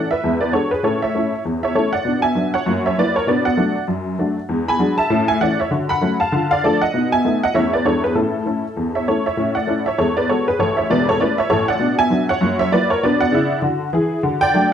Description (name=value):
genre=jazz, stride piano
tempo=197 BPM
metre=4/4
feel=swing 59% on 8ths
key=A major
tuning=A4 = 440 Hz
part: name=honky-tonk upright piano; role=solo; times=0.0-14.7 s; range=E1 to B5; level=-16 LUFS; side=equal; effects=none
room=moderate studio reverb, RT60 0.9 s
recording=none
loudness=-16 LUFS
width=side -8 dB against mid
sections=0.0-9.4 A section; 9.4-14.7 A section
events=none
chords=0.2 E9; 0.8 A; 2.1 Bm; 2.7 F#7; 3.3 Bm7; 4.5 E9; 5.1 A; 5.7 Dmaj7; 6.3 Dm; 6.9 B7; 7.5 A/E; 7.9 E7; 8.2 A; 10.0 Eadd9; 10.6 A; 11.8 Bm; 12.4 F#7; 13.0 Bm